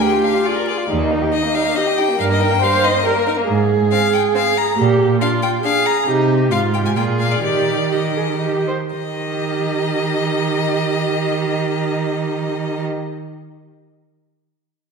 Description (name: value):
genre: quick classical-period movement for string quartet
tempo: 115-140 BPM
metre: 3/4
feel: straight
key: Eb major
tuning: A4 = 440 Hz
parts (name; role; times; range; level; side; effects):
- bright violin; melody; 0.0-12.8 s; Bb4 to Bb5; -22 LUFS; left 6 dB; none
- rich violin; second line; 0.0-12.8 s; G3 to Eb5; -26 LUFS; left 3 dB; none
- warm viola; accompaniment; 0.0-12.8 s; Eb4 to C5; -20 LUFS; right 3 dB; none
- warm cello; bass; 0.9-12.8 s; Eb2 to Eb3; -21 LUFS; right 4 dB; none
room: wet recital hall reverb, RT60 1.6 s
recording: recorded in a church or concert hall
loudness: -15 LUFS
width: side -5 dB against mid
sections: 0.0-8.9 A section; 8.9-12.1 B section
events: slowing down 5.4-8.9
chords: 0.0 Bb7/D (rootless); 0.9 Eb; 2.2 Eb/G; 3.5 Ab5; 4.8 Bb5; 6.1 Cm; 6.5 Fm/Ab; 7.0 Bb5; 7.4 Eb